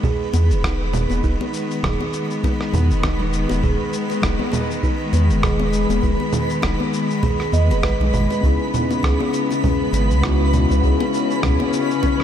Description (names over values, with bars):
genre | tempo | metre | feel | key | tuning
sunset chillout | 100 BPM | 4/4 | swing 57% on 16ths | E major | A4 = 441 Hz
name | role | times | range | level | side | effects
dark chamber string section | sustained chords | 0.0-12.2 s | C#3 to C#4 | -25 LUFS | left 3 dB | none
buzzing kalimba | arpeggios | 0.0-12.2 s | C#4 to D#5 | -26 LUFS | right 1 dB | digital delay
electronic congas, shaker and rim click | drums | 0.0-12.2 s | none | -26 LUFS | right 2 dB | none
electronic kick drum | drums | 0.0-12.2 s | none | -23 LUFS | equal | none
twinkling granular texture | texture | 0.0-12.2 s | B4 to B5 | -28 LUFS | right 1 dB | built-in reverb
warm sub bass | bass | 0.3-11.6 s | E1 to E2 | -19 LUFS | equal | none
congas | percussion | 0.3-12.2 s | none | -30 LUFS | left 7 dB | none
tine electric piano | accompaniment | 8.4-12.2 s | B3 to G#4 | -24 LUFS | moving between left 8 dB and equal | medium tremolo, auto-pan, digital delay
room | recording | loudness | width
light reverb, small room ambience | dark, warm production | -17 LUFS | side -9 dB against mid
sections
0.0-12.2 A section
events
none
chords
0.0 Emaj7; 8.4 C#m7